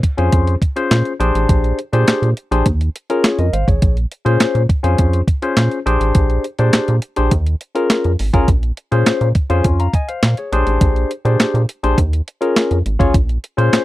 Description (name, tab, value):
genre	early-eighties boogie funk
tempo	103 BPM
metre	4/4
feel	straight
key	Bb minor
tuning	A4 = 439 Hz
part	crisp 8-bit digital drum machine	drums	0.0-13.8 s	handclaps, hi-hat, kick drum, snare drum	-15 LUFS	equal	none
part	barky tine electric piano	accompaniment	0.2-13.8 s	Db4 to Bb5	-18 LUFS	left 2 dB	phaser
part	rubbery square bass	bass	0.2-13.8 s	Ab1 to Bb2	-16 LUFS	equal	none
room	little or no reverb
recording	dry, close 1970s-style studio recording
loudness	-14 LUFS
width	side -16 dB against mid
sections	0.0-13.8 A section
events	none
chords	0.0 Bbm9 (rootless); 1.2 Bb13; 2.7 Eb9sus4; 3.8 Bbm9; 5.9 Bb13; 7.3 Eb9sus4; 8.5 Bbm9; 10.5 Bb13; 12.0 Eb9sus4; 13.1 Bbm9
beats	0.33 0.91 | 1.49 2.07 2.65 3.24 | 3.82 4.40 4.99 5.57 | 6.15 6.73 7.32 7.90 | 8.48 9.06 9.64 10.23 | 10.81 11.39 11.97 12.56 | 13.14 13.72